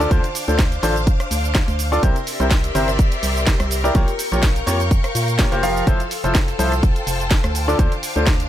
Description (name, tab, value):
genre	piano house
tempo	125 BPM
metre	4/4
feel	swing 54% on 16ths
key	unclear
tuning	A4 = 441 Hz
part	string machine, violins	sustained chords	0.0-8.5 s	A4 to E6	-28 LUFS	equal	ensemble chorus, vintage 12-bit sampler grit, sidechain pumping
part	clear grand piano	riff	0.0-8.3 s	C3 to F5	-22 LUFS	left 1 dB	sidechain pumping, tape echo
part	organ-like FM bass	bass	0.0-8.5 s	F1 to Bb2	-22 LUFS	equal	sidechain pumping
part	house drum kit	drums	0.0-8.5 s	hi-hat, rim click, shaker, snare drum	-25 LUFS	right 1 dB	none
part	rich studio string section	texture	0.0-8.5 s	C4 to Db6	-28 LUFS	left 2 dB	sidechain pumping
part	electronic kick drum	drums	0.1-8.4 s	none	-17 LUFS	equal	none
room	little or no reverb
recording	none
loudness	-16 LUFS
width	side -12 dB against mid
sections	0.0-8.5 A section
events	none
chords	0.0 Dm7; 2.0 C7; 4.0 Bbm6; 5.9 Fmaj7; 7.5 Dm7